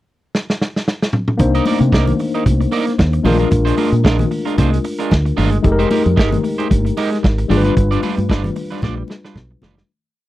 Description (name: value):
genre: disco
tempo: 113 BPM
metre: 4/4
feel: swing 56% on 16ths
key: C minor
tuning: A4 = 442 Hz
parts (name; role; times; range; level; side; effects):
- vintage drum kit; drums; 0.3-9.9 s; hi-hat, kick drum, snare drum, toms; -16 LUFS; equal; none
- barky tine electric piano; accompaniment; 1.4-9.9 s; G3 to C5; -20 LUFS; left 3 dB; medium stereo tremolo
- electric guitar at the edge of break-up; accompaniment; 1.4-9.8 s; G3 to Eb5; -22 LUFS; right 6 dB; none
- fingered electric bass; bass; 1.4-9.8 s; F1 to C3; -16 LUFS; equal; none
- congas; percussion; 1.7-9.8 s; none; -23 LUFS; left 4 dB; none
room: little or no reverb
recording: dry, close 1970s-style studio recording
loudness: -14 LUFS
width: side -15 dB against mid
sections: 0.0-1.4 pickup bar; 1.4-9.9 verse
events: drum fill 0.3-1.4, 8.8-9.9; fade-out 7.8-9.9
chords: 0.0 N.C.; 1.4 Cm9; 3.3 Bb7; 5.6 Fm11; 7.5 G7